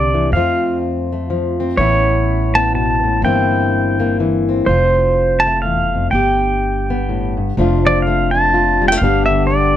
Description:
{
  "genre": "acoustic folk duo or small band",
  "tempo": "124 BPM",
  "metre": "3/4",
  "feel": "swing 59% on 8ths",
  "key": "unclear",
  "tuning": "A4 = 440 Hz",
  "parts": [
    { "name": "pedal steel guitar", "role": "melody", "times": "0.0-9.8 s", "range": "C5 to A5", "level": "-16 LUFS", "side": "right 1 dB", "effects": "none" },
    { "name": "fingerpicked plugged-in steel-string acoustic guitar", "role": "accompaniment", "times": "0.0-9.8 s", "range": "E2 to G4", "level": "-18 LUFS", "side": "left 3 dB", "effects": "none" },
    { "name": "upright bass", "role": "bass", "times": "0.0-9.8 s", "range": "F1 to F2", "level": "-20 LUFS", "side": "right 1 dB", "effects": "none" }
  ],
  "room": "light reverb",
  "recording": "close, detailed microphones",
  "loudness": "-13 LUFS",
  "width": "side -11 dB against mid",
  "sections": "0.0-7.6 A section; 7.6-9.8 B section",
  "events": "none",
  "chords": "0.3 F; 1.8 Aadd9; 3.2 C7/G; 4.7 F; 6.1 G; 7.6 F6; 9.0 G"
}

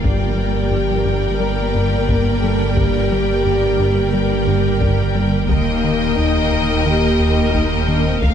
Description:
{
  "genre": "cinematic, hybrid orchestral and electronic film score",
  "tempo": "88 BPM",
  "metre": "4/4",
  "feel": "straight",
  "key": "G minor",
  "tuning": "A4 = 439 Hz",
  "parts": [
    { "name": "warm symphonic violin section", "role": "melody", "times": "0.0-8.3 s", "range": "F5 to G5", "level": "-28 LUFS", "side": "left 4 dB", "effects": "none" },
    { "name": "rich symphonic viola section", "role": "accompaniment", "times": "0.0-8.3 s", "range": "Bb4", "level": "-26 LUFS", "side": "equal", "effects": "none" },
    { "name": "granular cloud pad", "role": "sustained chords", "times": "0.0-8.3 s", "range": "D3 to D5", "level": "-25 LUFS", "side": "right 1 dB", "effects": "built-in reverb" },
    { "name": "mellow French horn section", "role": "sustained chords", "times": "0.0-8.3 s", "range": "Bb3 to Bb4", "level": "-22 LUFS", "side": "left 2 dB", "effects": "none" },
    { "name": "rubbery square bass", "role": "riff", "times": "0.0-8.3 s", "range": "D2 to G3", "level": "-23 LUFS", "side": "left 2 dB", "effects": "none" },
    { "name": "rich studio double bass section", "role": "bass", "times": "0.0-8.3 s", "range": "G1 to Eb2", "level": "-23 LUFS", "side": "right 4 dB", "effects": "none" },
    { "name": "sub bass with octave", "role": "bass", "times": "0.0-8.3 s", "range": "D1 to G1", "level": "-25 LUFS", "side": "equal", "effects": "none" },
    { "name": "solo taiko drums", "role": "drums", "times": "0.0-8.3 s", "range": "none", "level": "-23 LUFS", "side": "equal", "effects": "none" },
    { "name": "rich studio violin section", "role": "second line", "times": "0.1-8.3 s", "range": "D5 to F5", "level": "-26 LUFS", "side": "left 2 dB", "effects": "none" },
    { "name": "warm symphonic cello section", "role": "bass", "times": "0.1-8.3 s", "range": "D2 to G2", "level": "-24 LUFS", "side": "right 2 dB", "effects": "none" },
    { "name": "swell", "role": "sound effects", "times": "8.2-8.3 s", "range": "none", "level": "barely audible", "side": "none", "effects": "none" }
  ],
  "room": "moderate scoring stage reverb, RT60 1.6 s",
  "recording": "none",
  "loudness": "-14 LUFS",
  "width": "side -8 dB against mid",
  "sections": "0.0-8.3 A section",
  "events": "none",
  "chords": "0.0 Gm; 5.5 Eb"
}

